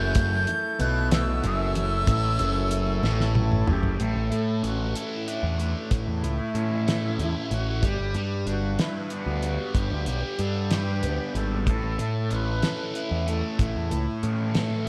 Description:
psychedelic rock; 62 BPM (dotted quarters); 6/8; straight; A mixolydian; A4 = 442 Hz
bright reedy silver concert flute; melody; 0.0-14.3 s; D4 to G6; -35 LUFS; equal; analog delay
combo organ; sustained chords; 0.0-3.9 s; A3 to A4; -35 LUFS; equal
fuzz guitar; riff; 0.0-14.9 s; F#2 to B4; -32 LUFS; equal; distortion, phaser
growling picked electric bass; bass; 0.0-14.9 s; F#1 to A2; -29 LUFS; equal; overdrive
cloth-damped thuddy drum kit; drums; 0.1-14.7 s; hi-hat, kick drum, snare drum, toms; -29 LUFS; equal
congas; percussion; 0.2-3.9 s; -40 LUFS; equal
moderate lush hall reverb, RT60 1.7 s, studio ambience; dreamy mix soaked in reverb; -26 LUFS; mono
0.0-4.0 A section; 4.0-14.9 B section
flute solo 0.0-4.0; drum fill 3.0-4.0
0.0 F#m7; 4.0 A; 7.8 G; 11.7 A
| 0.16 1.11 | 2.07 3.03 | 3.99 4.95 | 5.91 6.87 | 7.83 8.79 | 9.75 10.71 | 11.67 12.63 | 13.59 14.55

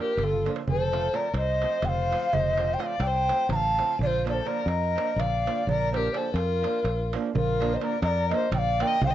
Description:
balkan folk, Balkan wedding band; 252 BPM (eighths); 7/8; straight; Bb major; A4 = 439 Hz
mellow hollow ney; melody; 0.0-9.1 s; A4 to Bb5; -26 LUFS; equal
dark violin; second line; 0.0-9.1 s; F4 to F5; -32 LUFS; left 9 dB; cassette tape
flamenco guitar; accompaniment; 0.0-9.0 s; F3 to Bb4; -33 LUFS; right 8 dB; cassette tape
darbuka; percussion; 0.1-9.1 s; -34 LUFS; right 6 dB
fingered electric bass; bass; 0.2-9.1 s; F1 to F2; -28 LUFS; equal
moderate small room reverb, RT60 0.5 s; home recording on cassette, nothing above 7.8 kHz; -23 LUFS; side -12 dB against mid
0.0-7.4 A section; 7.4-9.1 B section
drum fill 0.3-0.7
0.0 Bb; 0.7 F; 4.0 Bb
0.20 0.44 | 0.68 0.92 1.16 1.39 1.63 1.87 2.11 | 2.35 2.58 2.82 3.06 3.30 3.54 3.78 | 4.02 4.25 4.49 4.73 4.97 5.21 5.45 | 5.68 5.92 6.16 6.40 6.64 6.88 7.12 | 7.35 7.59 7.83 8.07 8.31 8.54 8.78 | 9.02

